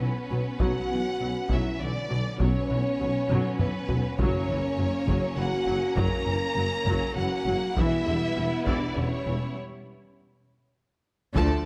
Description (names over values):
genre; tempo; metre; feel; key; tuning
cinematic, epic orchestral film score; 100 BPM; 3/4; straight; B harmonic minor; A4 = 440 Hz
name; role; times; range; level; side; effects
warm symphonic violin section; melody; 0.0-11.7 s; B4 to A#5; -36 LUFS; equal; none
rich studio violin section; second line; 0.0-11.7 s; A#3 to A4; -38 LUFS; equal; none
warm symphonic viola section; accompaniment; 0.0-11.6 s; D3 to A3; -37 LUFS; equal; none
dark French horn section; sustained chords; 0.0-11.6 s; D3 to A#4; -34 LUFS; equal; none
dark symphonic cello section; bass; 0.0-11.6 s; E2 to D3; -36 LUFS; equal; none
mellow tuba; bass; 0.0-11.6 s; E1 to D2; -36 LUFS; equal; none
warm symphonic double bass section; bass; 0.0-11.6 s; E1 to D2; -35 LUFS; equal; none
taiko ensemble; drums; 0.6-11.7 s; none; -32 LUFS; equal; none
timpani; percussion; 4.2-5.0, 11.4-11.7 s; F#2 to D3; -39 LUFS; equal; none
bright trombone section; sustained chords; 11.4-11.7 s; D3 to A3; -40 LUFS; equal; none
warm studio string section; sustained chords; 11.4-11.7 s; A3 to D5; -40 LUFS; equal; none
room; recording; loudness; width
moderate scoring stage reverb, RT60 1.7 s; none; -27 LUFS; mono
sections
0.0-11.4 A section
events
drum fill 3.3-4.2, 10.5-11.4; break 9.6-11.4; band accent 11.4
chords
0.0 Bmadd9; 4.2 F#; 7.8 Em; 9.6 N.C.